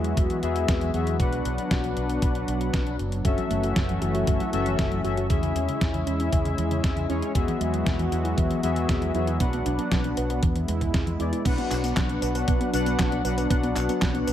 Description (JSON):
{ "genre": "italo disco", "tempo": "117 BPM", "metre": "4/4", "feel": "straight", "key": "unclear", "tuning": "A4 = 438 Hz", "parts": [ { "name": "warm analog pad", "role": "sustained chords", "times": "0.0-14.3 s", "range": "E3 to F#4", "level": "-29 LUFS", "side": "equal", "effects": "chorus" }, { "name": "analog synth brass", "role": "stabs", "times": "0.0-14.3 s", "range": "B3 to F#5", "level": "-29 LUFS", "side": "left 4 dB", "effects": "chorus, tape echo" }, { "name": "fingered electric bass with an envelope filter", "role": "bass", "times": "0.0-14.3 s", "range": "F#1 to E2", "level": "-29 LUFS", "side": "equal", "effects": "none" }, { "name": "detuned 8-bit digital drum machine", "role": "drums", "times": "0.0-14.3 s", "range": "crash cymbal, handclaps, hi-hat, snare drum, tambourine", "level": "-31 LUFS", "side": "equal", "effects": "none" }, { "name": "electronic kick drum", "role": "drums", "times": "0.2-14.1 s", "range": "none", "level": "-26 LUFS", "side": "equal", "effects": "none" }, { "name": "soft round pluck", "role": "arpeggios", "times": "3.2-14.3 s", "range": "G#2 to B4", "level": "-32 LUFS", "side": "right 3 dB", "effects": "chorus, tape echo" } ], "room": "light reverb, digital ambience", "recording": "none", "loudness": "-22 LUFS", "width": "side -11 dB against mid", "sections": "0.0-11.5 A section; 11.5-14.3 B section", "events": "none", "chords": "0.0 Eadd9; 1.2 Bm; 3.2 F#m7; 5.3 C#m/E; 7.4 Eadd9; 9.4 Bm; 10.4 E; 11.5 Bm" }